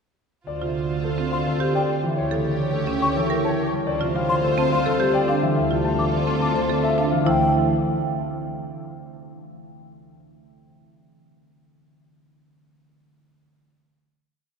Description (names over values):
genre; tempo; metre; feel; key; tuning
classical, minimalist pattern music; 106 BPM; 3/4; straight; D minor; A4 = 441 Hz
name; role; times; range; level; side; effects
dark concert grand piano; melody; 0.5-7.5 s; A4 to A5; -28 LUFS; left 6 dB; none
rich studio string section; sustained chords; 0.5-7.1 s; F4 to C#5; -28 LUFS; left 2 dB; none
clear chamber double bass section; bass; 0.5-7.5 s; D2; -28 LUFS; right 3 dB; none
concert harp; accompaniment; 0.6-9.0 s; C3 to C#4; -26 LUFS; equal; none
marimba with hard mallets; arpeggios; 0.6-7.5 s; C4 to C5; -27 LUFS; right 3 dB; none
mellow hollow concert flute; arpeggios; 1.3-7.5 s; F5 to D6; -28 LUFS; left 1 dB; none
room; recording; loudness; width
wet cathedral reverb, RT60 4.2 s; none; -20 LUFS; side -6 dB against mid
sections
0.5-7.3 A section; 7.3-9.0 final chord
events
none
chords
0.5 Dm11; 2.2 A7/D; 3.9 Dm11; 5.6 Fmaj7/D; 7.3 D9sus4